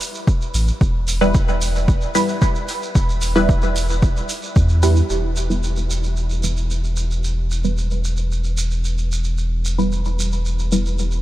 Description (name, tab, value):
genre	dub techno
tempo	112 BPM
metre	4/4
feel	straight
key	E minor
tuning	A4 = 440 Hz
part	electronic hi-hat	drums	0.0-4.9 s	none	-33 LUFS	equal	overdrive
part	shekere	percussion	0.0-11.2 s	none	-30 LUFS	right 4 dB	none
part	electronic kick drum	drums	0.3-4.7 s	none	-17 LUFS	equal	overdrive
part	soft dub sub bass	bass	0.5-11.2 s	E1 to E2	-20 LUFS	equal	sidechain pumping
part	filtered dub chord stab	stabs	1.2-11.2 s	G3 to B4	-23 LUFS	right 1 dB	phaser, dub echo
part	dark analog pad	sustained chords	5.1-11.2 s	B3 to B4	-46 LUFS	equal	none
room	light reverb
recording	none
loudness	-17 LUFS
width	side -14 dB against mid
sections	0.0-5.1 A section; 5.1-11.2 B section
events	filter sweep on synth stab 5.1-11.2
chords	0.0 Em